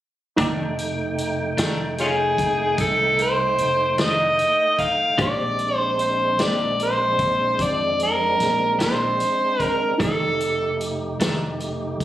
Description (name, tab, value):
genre	slow blues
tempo	50 BPM (dotted quarters)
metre	12/8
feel	straight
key	F mixolydian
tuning	A4 = 442 Hz
part	clean electric guitar	accompaniment	0.4-11.4 s	F2 to G4	-26 LUFS	left 2 dB	tremolo
part	dark upright piano	accompaniment	0.4-12.0 s	A3 to D6	-29 LUFS	right 4 dB	none
part	tonewheel organ	sustained chords	0.4-12.0 s	Ab3 to G5	-28 LUFS	right 1 dB	slow rotary speaker, overdrive, chorus vibrato
part	fretless electric bass	bass	0.4-12.0 s	F1 to F2	-30 LUFS	equal	lush chorus
part	vintage drum kit	drums	0.4-12.0 s	hi-hat, kick drum, snare drum	-28 LUFS	equal	none
part	overdriven harmonica	melody	2.0-10.9 s	Db4 to F5	-19 LUFS	equal	none
room	light reverb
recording	recorded on a phone in the room, studio reverb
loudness	-19 LUFS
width	side -13 dB against mid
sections	0.4-12.0 A section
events	none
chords	0.4 F13; 5.2 Bb13; 10.0 F13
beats	| 0.38 1.58 2.79 3.99 | 5.19 6.39 7.59 8.79 | 10.00 11.20